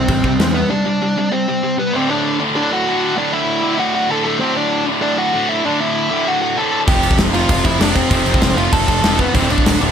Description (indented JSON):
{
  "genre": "punk rock",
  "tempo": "194 BPM",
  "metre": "4/4",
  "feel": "straight",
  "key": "unclear",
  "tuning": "A4 = 440 Hz",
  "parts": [
    { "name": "dark smooth lead guitar", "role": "melody", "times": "0.0-9.8 s", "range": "A3 to A5", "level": "-18 LUFS", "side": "equal", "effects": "overdrive" },
    { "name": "tight distorted guitar", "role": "riff", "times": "0.0-9.9 s", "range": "D2 to G3", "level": "-18 LUFS", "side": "equal", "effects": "distortion" },
    { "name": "fuzz picked electric bass", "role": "bass", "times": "0.0-0.6, 6.9-9.9 s", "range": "D1 to E2", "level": "-20 LUFS", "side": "equal", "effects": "overdrive" },
    { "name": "big rock drum kit", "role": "drums", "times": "0.1-0.5, 6.9-9.9 s", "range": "crash cymbal, kick drum, snare drum", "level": "-17 LUFS", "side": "equal", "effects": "none" }
  ],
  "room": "light reverb",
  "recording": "none",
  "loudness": "-14 LUFS",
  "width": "side -8 dB against mid",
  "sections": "0.0-1.9 A section; 1.9-9.9 B section",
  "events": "break 0.7-1.9",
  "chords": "0.0 C; 1.9 D; 6.9 F; 9.3 D5",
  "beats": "0.09 0.39 | 0.70 1.01 1.32 1.63 | 1.94 2.25 2.56 2.86 | 3.17 3.48 3.79 4.10 | 4.41 4.71 5.02 5.33 | 5.64 5.95 6.26 6.57 | 6.87 7.18 7.49 7.80 | 8.11 8.42 8.73 9.04 | 9.34 9.65"
}